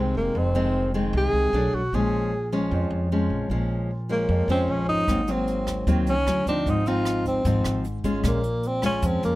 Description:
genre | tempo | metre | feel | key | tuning
bossa nova | 152 BPM | 4/4 | straight | Bb minor | A4 = 440 Hz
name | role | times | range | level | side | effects
mellow tenor saxophone | melody | 0.0-9.4 s | Bb3 to Ab4 | -25 LUFS | equal | none
nylon-string guitar | accompaniment | 0.0-9.4 s | F2 to F4 | -25 LUFS | left 1 dB | none
upright bass | bass | 0.0-9.4 s | F1 to F2 | -27 LUFS | equal | none
jazz brush drum kit | drums | 5.1-9.3 s | hi-hat, kick drum, rim click | -30 LUFS | equal | none
room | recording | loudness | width
little or no reverb | close, detailed microphones | -21 LUFS | side -17 dB against mid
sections
0.0-9.4 A section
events
tenor saxophone solo 0.0-9.4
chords
0.0 Fm7; 1.5 Bm7; 1.9 Bbm7; 5.1 Ab9; 6.3 Dmaj9; 6.7 Dbmaj9/Ab; 8.2 Bbm7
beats
| 0.35 0.74 1.14 1.53 | 1.93 2.32 2.72 3.11 | 3.50 3.90 4.29 4.69 | 5.08 5.48 5.87 6.27 | 6.66 7.06 7.45 7.85 | 8.24 8.64 9.03

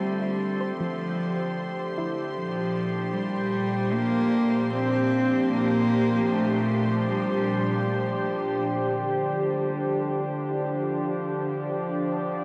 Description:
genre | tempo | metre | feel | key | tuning
ambient | 76 BPM | 4/4 | straight | D minor | A4 = 439 Hz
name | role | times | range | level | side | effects
warm cello | melody | 0.0-8.3 s | F3 to C4 | -29 LUFS | equal | tape echo
warbly tape-like pad | sustained chords | 0.0-12.4 s | Bb2 to E5 | -29 LUFS | equal | chorus, built-in reverb
soft round pluck | arpeggios | 0.0-3.8, 8.9-12.4 s | F3 to D6 | -42 LUFS | equal | none
warm symphonic violin section | texture | 0.0-8.7 s | C6 | -43 LUFS | equal | none
room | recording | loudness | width
wet huge ambient reverb, RT60 7.6 s | in a vast, echoing space | -26 LUFS | mono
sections
0.0-8.7 A section; 8.7-12.4 B section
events
fade-in on ambient pad 0.0-8.7; fade-in on violin section 0.0-8.7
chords
0.0 Dm11; 2.3 Bb6; 8.7 Dm11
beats
0.77 1.56 | 2.35 3.13 3.92 4.71 | 5.50 6.29 7.08 7.87 | 8.66 9.45 10.24 11.03 | 11.82

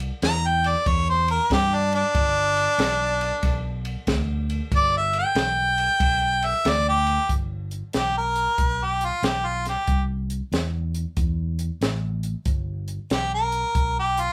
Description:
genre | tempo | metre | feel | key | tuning
electric blues shuffle | 93 BPM | 4/4 | swing 65% on 8ths | G mixolydian | A4 = 440 Hz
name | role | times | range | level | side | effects
fingered electric bass | bass | 0.0-14.3 s | G1 to G2 | -30 LUFS | equal | none
compact cocktail drum kit | drums | 0.0-14.3 s | hi-hat, kick drum, ride cymbal, snare drum | -29 LUFS | equal | none
bright harmonica | melody | 0.2-14.3 s | D4 to Bb5 | -24 LUFS | equal | overdrive
room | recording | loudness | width
moderate studio ambience, RT60 0.5 s | band playing live in one room | -23 LUFS | mono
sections
0.0-7.3 A section; 7.3-14.3 B section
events
harmonica solo 0.0-7.3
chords
0.0 C (rootless); 2.1 G; 9.9 C; 12.5 G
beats
0.23 0.87 1.51 | 2.15 2.79 3.43 4.08 | 4.72 5.36 6.00 6.65 | 7.29 7.94 8.58 9.23 | 9.87 10.52 11.17 11.81 | 12.46 13.11 13.75

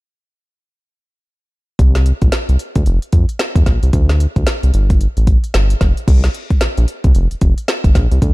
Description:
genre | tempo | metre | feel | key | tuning
R&B, new jack swing | 112 BPM | 4/4 | swing 60% on 16ths | unclear | A4 = 440 Hz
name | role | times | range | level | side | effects
round analog bass | bass | 1.8-8.3 s | F1 to F2 | -13 LUFS | equal | none
deep house drum kit | drums | 1.8-8.3 s | crash cymbal, hi-hat, kick drum, snare drum | -14 LUFS | equal | none
room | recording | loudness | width
digital ambience | dark, warm production | -12 LUFS | side -21 dB against mid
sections
1.8-6.1 A section; 6.1-8.3 B section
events
none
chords
none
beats
| 1.79 2.33 2.86 3.40 | 3.93 4.47 5.00 5.54 | 6.08 6.61 7.15 7.68 | 8.22

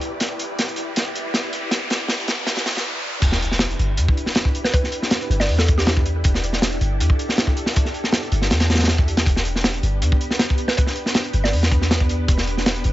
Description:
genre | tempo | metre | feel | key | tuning
drum and bass, jungle | 159 BPM | 4/4 | straight | E minor | A4 = 440 Hz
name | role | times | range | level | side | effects
soft string machine | sustained chords | 0.0-12.9 s | B3 to D5 | -29 LUFS | equal | ensemble chorus, vintage 12-bit sampler grit
warm 808-style bass | bass | 0.0-12.9 s | E1 to E2 | -20 LUFS | equal | tube saturation, high-pass filter
crunchy breakbeat drum kit | drums | 0.0-12.9 s | crash cymbal, hi-hat, kick drum, snare drum | -19 LUFS | equal | none
riser, noise sweep and sub drop | sound effects | 0.0-4.7 s | none | -29 LUFS | equal | none
mallet-like synth pluck | melody | 4.6-5.9, 10.7-11.6 s | G4 to D5 | -29 LUFS | right 2 dB | chorus, cassette tape, dub echo
room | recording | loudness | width
studio reverb | high-pass filter, nothing above 7.7 kHz | -18 LUFS | side -15 dB against mid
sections
0.0-3.2 A section; 3.2-12.9 B section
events
build-up 0.0-3.2; riser 0.0-3.2; drum fill 0.2-2.8; noise sweep 1.7-3.2; break 2.8-3.2; drop 3.2-12.9; impact 3.2-4.7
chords
0.0 Em7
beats
| 0.21 0.58 0.96 1.34 | 1.72 2.09 2.47 2.85 | 3.23 3.60 3.98 4.36 | 4.74 5.11 5.49 5.87 | 6.25 6.62 7.00 7.38 | 7.75 8.13 8.51 8.89 | 9.26 9.64 10.02 10.40 | 10.77 11.15 11.53 11.90 | 12.28 12.66

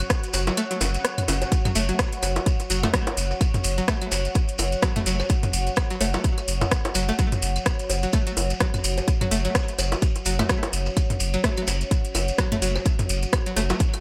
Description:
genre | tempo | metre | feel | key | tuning
minimal techno | 127 BPM | 4/4 | swing 57% on 16ths | unclear | A4 = 439 Hz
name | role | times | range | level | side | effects
round analog bass | bass | 0.0-13.7 s | F#1 | -28 LUFS | equal | sidechain pumping
house drum kit | drums | 0.0-14.0 s | hi-hat, rim click | -30 LUFS | equal | tape echo
electronic claves, bongos and toms | percussion | 0.0-14.0 s | none | -31 LUFS | equal | analog delay
shekere | percussion | 0.0-14.0 s | none | -34 LUFS | equal | tape echo
deep dark ambient pad | texture | 0.0-14.0 s | F#4 to F#5 | -34 LUFS | equal | chorus, built-in reverb, sidechain pumping
electronic kick drum | drums | 0.1-13.9 s | none | -26 LUFS | equal | none
string-like resonator pluck | riff | 0.5-13.7 s | C#3 to A3 | -32 LUFS | equal | chorus, sidechain pumping, dub echo
room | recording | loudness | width
light reverb | echo-heavy mix | -24 LUFS | mono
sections
0.0-14.0 A section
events
kick drops out 0.6-1.5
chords
0.0 F#5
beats
0.10 0.57 1.04 | 1.52 1.99 2.46 2.94 | 3.41 3.88 4.35 4.83 | 5.30 5.77 6.24 6.71 | 7.19 7.66 8.13 8.60 | 9.08 9.55 10.02 10.49 | 10.97 11.44 11.91 12.38 | 12.86 13.33 13.80

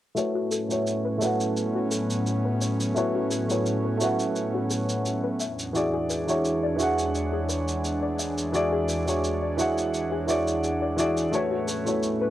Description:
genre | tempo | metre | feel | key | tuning
sunset chillout | 86 BPM | 4/4 | swing 54% on 16ths | A major | A4 = 439 Hz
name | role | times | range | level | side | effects
dark baby grand piano | accompaniment | 0.1-12.3 s | E3 to F#5 | -26 LUFS | equal | auto-pan, low-pass filter, cassette tape, analog delay, plate reverb
airy breathy pad | sustained chords | 0.5-12.3 s | E2 to D4 | -29 LUFS | equal | chorus, cassette tape, plate reverb
shaker | drums | 0.2-12.2 s | none | -34 LUFS | right 1 dB | cassette tape
soft round pluck | arpeggios | 0.4-12.3 s | F#4 to E5 | -35 LUFS | left 6 dB | wide subtle chorus, cassette tape, analog delay, plate reverb
room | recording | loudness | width
moderate studio reverb, RT60 0.6 s | home recording on cassette | -24 LUFS | side -13 dB against mid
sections
0.2-12.3 A section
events
filter sweep on grand piano 0.2-12.3; filter sweep on synth arpeggio sound 0.2-12.3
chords
0.2 A69; 5.4 E7; 11.3 A69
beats
| 0.17 0.86 1.56 2.26 | 2.96 3.66 4.35 5.05 | 5.75 6.45 7.14 7.84 | 8.54 9.24 9.94 10.63 | 11.33 12.03

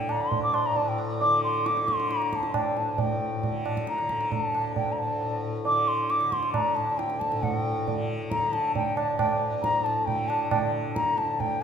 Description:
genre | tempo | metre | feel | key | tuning
indian classical, Hindustani | 135 BPM | 5/4 | straight | unclear | A4 = 440 Hz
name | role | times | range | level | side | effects
mellow bansuri | melody | 0.0-11.6 s | G5 to D6 | -26 LUFS | left 1 dB | none
tanpura | drone | 0.0-11.6 s | D2 to D3 | -33 LUFS | left 2 dB | none
tabla | percussion | 0.1-11.6 s | none | -30 LUFS | right 4 dB | none
room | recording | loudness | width
wet concert hall reverb, RT60 2.4 s | minimal, uncompressed stereo recording | -24 LUFS | side -7 dB against mid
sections
0.0-11.6 A section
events
none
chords
none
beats
0.31 | 0.75 1.20 1.65 2.09 2.54 | 2.99 3.43 3.88 4.32 4.77 | 5.21 5.66 6.10 6.54 6.98 | 7.43 7.87 8.31 8.75 9.19 | 9.63 10.07 10.52 10.96 11.39

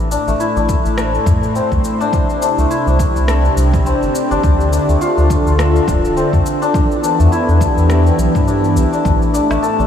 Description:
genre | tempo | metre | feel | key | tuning
organic downtempo | 104 BPM | 4/4 | swing 57% on 16ths | D dorian | A4 = 440 Hz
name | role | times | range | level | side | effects
warm analog pad | sustained chords | 0.0-9.9 s | A2 to E5 | -19 LUFS | right 1 dB | chorus, tremolo, sidechain pumping
santur | arpeggios | 0.0-9.9 s | A3 to A4 | -18 LUFS | left 3 dB | tape echo
round analog bass | bass | 0.0-9.9 s | D1 to A2 | -15 LUFS | equal | sidechain pumping
electronic cabasa, rim click and woodblock | drums | 0.1-9.9 s | none | -29 LUFS | equal | overdrive, studio reverb
electronic kick drum | drums | 0.7-9.2 s | none | -18 LUFS | equal | overdrive, studio reverb
udu | percussion | 1.3-1.4, 5.9-7.3 s | none | -18 LUFS | left 4 dB | none
room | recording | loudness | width
moderate huge ambient reverb, RT60 7.7 s | dreamy mix soaked in reverb | -12 LUFS | side -9 dB against mid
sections
0.0-9.9 A section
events
none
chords
0.0 Am; 2.1 Cadd9; 4.4 Dm; 6.7 Em7; 9.1 Am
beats
0.40 0.97 1.55 | 2.13 2.71 3.28 3.86 | 4.44 5.01 5.59 6.17 | 6.74 7.32 7.90 8.47 | 9.05 9.63

